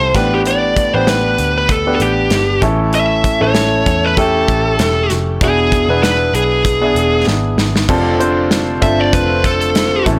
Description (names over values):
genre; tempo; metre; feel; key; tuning
piano-driven pop; 97 BPM; 4/4; swing 56% on 16ths; unclear; A4 = 440 Hz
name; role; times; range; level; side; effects
high-gain lead guitar; melody; 0.0-10.0 s; G4 to E5; -18 LUFS; equal; distortion, tape echo
warm concert grand piano; accompaniment; 0.0-10.2 s; A2 to C5; -19 LUFS; equal; none
vintage muted picked electric bass; bass; 0.0-10.2 s; E1 to E2; -22 LUFS; equal; none
modern studio drum kit; drums; 0.1-10.2 s; crash cymbal, hi-hat, kick drum, snare drum; -20 LUFS; equal; soft clipping on kick
bright tonewheel organ; sustained chords; 7.9-10.2 s; C#3 to F4; -28 LUFS; equal; none
room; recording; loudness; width
moderate studio reverb, RT60 0.8 s; blown-out, overdriven recording, overdrive; -14 LUFS; mono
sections
0.0-7.9 A section; 7.9-10.2 B section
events
drum fill 7.3-7.9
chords
0.1 G/A; 2.6 A; 5.4 E7; 7.9 F6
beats
| 0.46 1.07 1.69 2.31 | 2.93 3.55 4.17 4.79 | 5.41 6.03 6.65 7.27 | 7.89 8.51 9.13 9.75